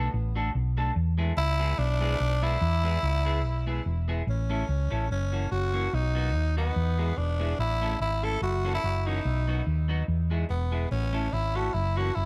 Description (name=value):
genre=ska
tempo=145 BPM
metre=4/4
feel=swing 55% on 8ths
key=A major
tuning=A4 = 440 Hz
part: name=clean electric guitar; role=accompaniment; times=0.0-12.2 s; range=E3 to A4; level=-38 LUFS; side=equal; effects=tape echo
part: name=hollow-body short-scale fingered electric bass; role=bass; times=0.0-12.3 s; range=E1 to E2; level=-29 LUFS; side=equal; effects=none
part: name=growling tenor saxophone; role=melody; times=1.4-12.3 s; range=B3 to A4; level=-33 LUFS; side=equal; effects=tape echo
room=light reverb, small room ambience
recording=none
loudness=-28 LUFS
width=mono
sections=0.0-4.3 A section; 4.3-12.3 B section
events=none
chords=0.0 D; 1.0 E; 4.3 A; 5.1 F#7; 5.9 B; 6.8 E; 7.6 A; 8.4 F#7; 9.2 B; 10.1 E; 10.9 A; 11.7 F#7